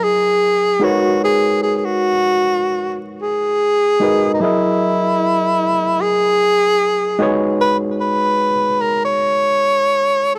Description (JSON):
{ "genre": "R&B", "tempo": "75 BPM", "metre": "4/4", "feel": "swing 57% on 16ths", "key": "G# minor", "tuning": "A4 = 440 Hz", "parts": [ { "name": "breathy tenor saxophone", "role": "melody", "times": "0.0-10.4 s", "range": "D#4 to C#5", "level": "-17 LUFS", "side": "equal", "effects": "none" }, { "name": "overdriven reed electric piano", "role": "accompaniment", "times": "0.0-10.4 s", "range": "F#3 to D#5", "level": "-23 LUFS", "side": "equal", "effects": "none" } ], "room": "light reverb", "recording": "dry, close 1970s-style studio recording, vinyl crackle", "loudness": "-16 LUFS", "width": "mono", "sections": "0.0-10.4 A section", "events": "none", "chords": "0.0 F#13; 0.8 G#m11; 4.4 F#13; 7.2 G#m11" }